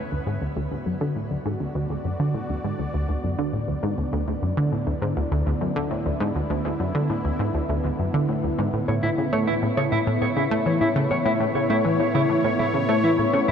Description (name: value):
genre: ambient, sequencer-driven space music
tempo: 101 BPM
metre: 4/4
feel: straight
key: unclear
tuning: A4 = 441 Hz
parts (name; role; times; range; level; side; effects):
- sweeping resonant pad; sustained chords; 0.0-13.5 s; A2 to D5; -26 LUFS; left 1 dB; chorus, shimmer reverb
- tight sequenced synth; riff; 0.0-13.5 s; D2 to A3; -24 LUFS; equal; chorus, tape echo, shimmer reverb
- mellow electric guitar; arpeggios; 8.9-13.5 s; E4 to C#5; -27 LUFS; right 1 dB; auto-pan, tape echo, shimmer reverb
room: wet huge ambient reverb, RT60 8.3 s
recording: dreamy mix soaked in reverb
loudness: -21 LUFS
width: side -7 dB against mid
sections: 0.0-13.5 A section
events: fade-in on analog synth pad 0.0-13.5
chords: 0.0 D; 8.7 A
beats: 0.42 1.01 | 1.60 2.20 2.79 3.39 | 3.98 4.57 5.17 5.76 | 6.36 6.95 7.54 8.14 | 8.73 9.33 9.92 10.52 | 11.11 11.70 12.30 12.89 | 13.48